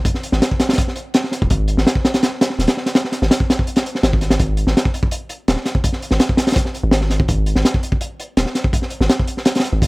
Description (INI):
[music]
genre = drum and bass, jungle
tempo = 166 BPM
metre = 4/4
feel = straight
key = unclear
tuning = A4 = 440 Hz
[part]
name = crunchy breakbeat drum kit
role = drums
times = 0.1-9.9 s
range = hi-hat, kick drum, snare drum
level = -16 LUFS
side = equal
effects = none
[part]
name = long sustained 808-style bass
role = bass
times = 0.3-9.9 s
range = D#1 to G#1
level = -18 LUFS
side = equal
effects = none
[sound]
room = little or no reverb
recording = none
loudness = -15 LUFS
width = side -26 dB against mid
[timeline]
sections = 0.0-4.4 A section; 4.4-9.9 A section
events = drop 0.0-4.4, 4.4-9.9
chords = none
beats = | 0.06 0.42 0.78 1.14 | 1.50 1.86 2.23 2.59 | 2.95 3.31 3.67 4.03 | 4.39 4.76 5.12 5.48 | 5.84 6.20 6.56 6.92 | 7.29 7.65 8.01 8.37 | 8.73 9.09 9.46 9.82